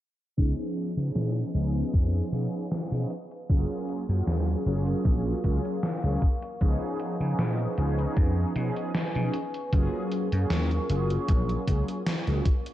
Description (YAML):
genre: vaporwave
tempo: 77 BPM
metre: 4/4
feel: swing 53% on 16ths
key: F# major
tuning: A4 = 445 Hz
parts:
  - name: mellow synth brass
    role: accompaniment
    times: 0.4-12.5 s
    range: E#3 to G#4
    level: -30 LUFS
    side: equal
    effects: phaser, analog chorus, tape echo
  - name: warbly tape-like pad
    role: sustained chords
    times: 1.5-12.7 s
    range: A#4 to C#6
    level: -39 LUFS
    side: equal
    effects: chorus, built-in reverb
  - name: vintage slap bass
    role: bass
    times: 0.4-12.4 s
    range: F#1 to C#3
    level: -27 LUFS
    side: equal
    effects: none
  - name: electronic kick drum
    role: drums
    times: 0.4-12.6 s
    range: none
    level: -24 LUFS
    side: equal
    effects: vintage 12-bit sampler grit
  - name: gated 80s digital drum machine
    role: drums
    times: 0.4-12.7 s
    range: hi-hat, snare drum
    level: -32 LUFS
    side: equal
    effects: gated reverb, gated reverb snare, vintage 12-bit sampler grit
room: light reverb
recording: dark, warm production, cassette tape, low-pass filter, nothing above 11.0 kHz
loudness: -25 LUFS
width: side -13 dB against mid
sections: 0.4-12.7 A section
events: filter sweep on ambient pad 0.4-12.7; filter sweep 0.4-12.7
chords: 0.4 C#7; 3.5 F#maj7; 6.6 C#7; 9.7 F#maj7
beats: | 0.38 1.16 1.94 2.72 | 3.50 4.28 5.05 5.83 | 6.61 7.39 8.17 8.95 | 9.73 10.51 11.29 12.07